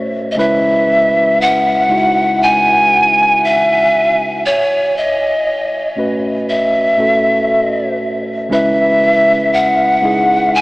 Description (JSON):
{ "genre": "R&B", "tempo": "59 BPM", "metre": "4/4", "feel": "straight", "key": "C# minor", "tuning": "A4 = 440 Hz", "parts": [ { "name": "mellow tine electric piano", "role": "accompaniment", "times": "0.0-10.6 s", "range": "A2 to C#5", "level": "-18 LUFS", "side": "equal", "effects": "medium stereo tremolo" }, { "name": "mellow polished pan flute", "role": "melody", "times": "0.3-10.6 s", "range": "C#5 to G#5", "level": "-12 LUFS", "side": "equal", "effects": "analog delay" } ], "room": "wet huge ambient reverb, RT60 7.7 s", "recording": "dreamy mix soaked in reverb, small speaker sound", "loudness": "-11 LUFS", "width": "side -22 dB against mid", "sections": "0.0-10.6 A section", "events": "none", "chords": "0.4 C#m7; 4.4 A6; 8.5 C#m7", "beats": "| 0.37 1.39 2.40 3.42 | 4.44 5.46 6.47 7.49 | 8.51 9.52 10.54" }